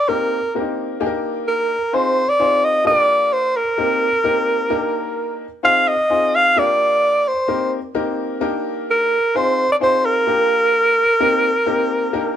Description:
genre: soul.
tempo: 130 BPM.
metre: 4/4.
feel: straight.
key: unclear.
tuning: A4 = 440 Hz.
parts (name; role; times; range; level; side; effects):
breathy alto saxophone; melody; 0.0-12.4 s; Bb4 to F5; -15 LUFS; right 1 dB; plate reverb.
clear upright piano; accompaniment; 0.1-12.4 s; Bb3 to C5; -22 LUFS; left 3 dB; none.
room: moderate club reverb, RT60 0.6 s.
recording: none.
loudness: -15 LUFS.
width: side -10 dB against mid.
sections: 0.0-12.4 A section.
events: none.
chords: 0.1 Cm7; 1.0 Ebmaj7; 1.9 Fm7; 2.9 Gm7; 3.8 Cm7; 4.7 Ebmaj7; 5.6 Fm7; 6.6 Gm7; 7.5 Cm7; 8.4 Ebmaj7; 9.3 Fm7; 10.3 Gm7; 11.2 Cm7.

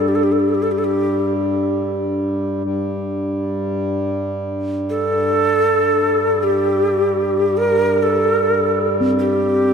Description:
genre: world meditative, free-time meditation music.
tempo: free time.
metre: none.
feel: none.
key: unclear.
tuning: A4 = 440 Hz.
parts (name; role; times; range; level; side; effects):
breathy Native American-style cedar flute; melody; 0.0-9.7 s; G4 to Bb4; -17 LUFS; equal; ping-pong delay.
hand-pumped harmonium; drone; 0.0-9.7 s; G2 to G3; -22 LUFS; right 1 dB; none.
bronze singing bowl; texture; 0.0-9.7 s; C4 to D4; -24 LUFS; left 1 dB; none.
room: wet cathedral reverb, RT60 5.0 s.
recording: none.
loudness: -16 LUFS.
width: side -6 dB against mid.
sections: 0.0-9.7 A section.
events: none.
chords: none.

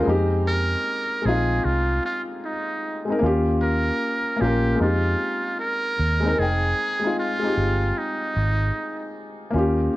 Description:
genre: lo-fi hip hop.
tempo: 76 BPM.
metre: 4/4.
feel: swing 64% on 16ths.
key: F minor.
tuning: A4 = 441 Hz.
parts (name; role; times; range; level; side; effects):
felt-muted upright piano; accompaniment; 0.0-10.0 s; Ab3 to G5; -24 LUFS; left 1 dB; cassette tape, low-pass filter.
vintage muted fingered electric bass; bass; 0.1-9.9 s; F1 to F2; -23 LUFS; right 1 dB; none.
trumpet with metal mute; melody; 0.5-9.2 s; Eb4 to Bb4; -26 LUFS; right 1 dB; low-pass filter, tape echo.
room: moderate studio reverb, RT60 0.6 s.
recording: cassette tape.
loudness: -20 LUFS.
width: side -17 dB against mid.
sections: 0.0-6.4 A section; 6.4-10.0 B section.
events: none.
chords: 0.1 Fm7; 3.2 Eb7; 4.8 Fm7.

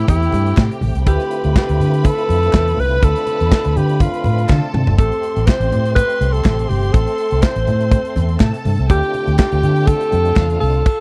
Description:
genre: disco.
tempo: 122 BPM.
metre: 4/4.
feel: straight.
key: unclear.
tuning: A4 = 440 Hz.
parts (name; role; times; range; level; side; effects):
warm alto saxophone; melody; 0.0-11.0 s; E4 to C5; -22 LUFS; equal; none.
clear studio string section; second line; 0.0-10.8 s; C4 to C6; -31 LUFS; equal; none.
tonewheel organ; sustained chords; 0.0-10.8 s; D3 to A4; -30 LUFS; equal; overdrive, chorus vibrato, stopped rotary speaker.
vintage muted fingered electric bass; bass; 0.0-10.8 s; G1 to D3; -19 LUFS; equal; none.
modern studio drum kit; drums; 0.1-11.0 s; crash cymbal, hi-hat, kick drum, snare drum, toms; -16 LUFS; equal; none.
congas; percussion; 0.1-10.7 s; none; -29 LUFS; equal; none.
group handclap; percussion; 0.6-10.5 s; none; -38 LUFS; equal; none.
room: little or no reverb.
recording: dry, close 1970s-style studio recording.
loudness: -16 LUFS.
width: mono.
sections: 0.0-11.0 A section.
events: drum fill 4.5-5.0.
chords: 0.0 Am7; 1.1 Dm7; 5.0 Am7; 8.9 Dm7.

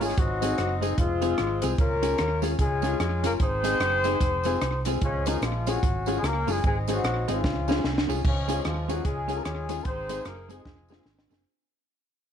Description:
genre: ska.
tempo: 149 BPM.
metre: 4/4.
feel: swing 61% on 8ths.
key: Db major.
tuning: A4 = 436 Hz.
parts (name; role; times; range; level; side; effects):
mellow horn section; melody; 0.0-11.3 s; Db3 to C5; -28 LUFS; left 2 dB; none.
hollow-body jazz guitar; accompaniment; 0.0-11.4 s; Ab3 to Ab4; -34 LUFS; right 13 dB; none.
dark upright piano; stabs; 0.0-11.4 s; C4 to Ab4; -33 LUFS; left 12 dB; slapback echo.
hollow-body short-scale fingered electric bass; bass; 0.0-11.4 s; F1 to F2; -30 LUFS; right 1 dB; none.
compact cocktail drum kit; drums; 0.0-11.4 s; crash cymbal, hi-hat, kick drum, rim click, snare drum; -28 LUFS; right 1 dB; slapback echo.
tambourine; percussion; 0.0-11.4 s; none; -44 LUFS; right 14 dB; none.
room: light reverb, small room ambience.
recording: 1960s-style stereo with parts hard left and right.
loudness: -23 LUFS.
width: side -8 dB against mid.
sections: 0.0-8.2 A section; 8.2-11.5 B section.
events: drum fill 7.4-8.2, 10.7-11.5; fade-out 8.2-11.5.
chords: 0.2 Ab; 1.0 Fm; 1.8 Db; 3.4 Ab; 4.2 Fm; 5.0 Db; 6.6 Ab; 7.4 Db; 9.8 Ab; 10.7 Fm.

